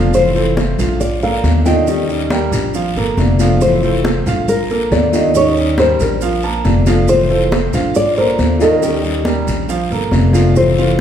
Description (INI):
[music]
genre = latin, Cuban son and guajira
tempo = 138 BPM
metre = 4/4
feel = straight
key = unclear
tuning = A4 = 440 Hz
[part]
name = fingerpicked plugged-in steel-string acoustic guitar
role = accompaniment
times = 0.0-11.0 s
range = C3 to G4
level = -20 LUFS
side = left 4 dB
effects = none
[part]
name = warm grand piano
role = arpeggios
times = 0.0-11.0 s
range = Eb3 to A5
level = -19 LUFS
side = right 4 dB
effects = none
[part]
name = upright bass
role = bass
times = 0.0-11.0 s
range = F1 to Eb2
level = -17 LUFS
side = equal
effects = none
[part]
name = nylon-string guitar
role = melody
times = 0.1-11.0 s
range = Bb4 to G5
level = -16 LUFS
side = left 1 dB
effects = none
[part]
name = congas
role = percussion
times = 0.1-11.0 s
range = none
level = -21 LUFS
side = equal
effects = none
[part]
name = guiro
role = percussion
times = 0.1-11.0 s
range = none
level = -29 LUFS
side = left 4 dB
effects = none
[part]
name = maracas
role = percussion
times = 0.1-11.0 s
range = none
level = -34 LUFS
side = right 6 dB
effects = none
[sound]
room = wet large studio reverb, RT60 1.3 s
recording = heard from further back in the room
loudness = -12 LUFS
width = side -9 dB against mid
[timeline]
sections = 0.0-10.6 A section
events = none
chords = 0.1 Fmaj7; 1.0 Bbmaj7; 1.9 Eb7; 2.7 Bbmaj7; 3.6 Fmaj7; 4.5 Bbmaj7; 5.4 Eb7; 6.2 Bbmaj7; 7.1 Fmaj7; 8.0 Bbmaj7; 8.8 Eb7; 9.7 Bbmaj7